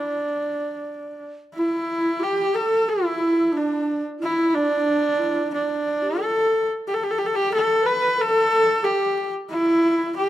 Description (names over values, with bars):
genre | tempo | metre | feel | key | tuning
mongolian traditional, Mongolian folk | 91 BPM | 4/4 | straight | D zhi mode | A4 = 443 Hz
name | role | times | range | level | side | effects
clear horsehead fiddle | melody | 0.0-10.3 s | D4 to B4 | -21 LUFS | equal | none
breathy mellow xiao | second line | 1.6-10.3 s | D4 to B4 | -24 LUFS | right 1 dB | none
room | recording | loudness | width
moderate recital hall reverb, RT60 1.5 s | close, detailed microphones | -19 LUFS | side -13 dB against mid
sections
0.0-1.6 A section; 1.6-10.3 B section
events
none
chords
none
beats
0.23 0.89 | 1.55 2.21 2.88 3.54 | 4.20 4.87 5.53 6.19 | 6.85 7.51 8.17 8.83 | 9.49 10.15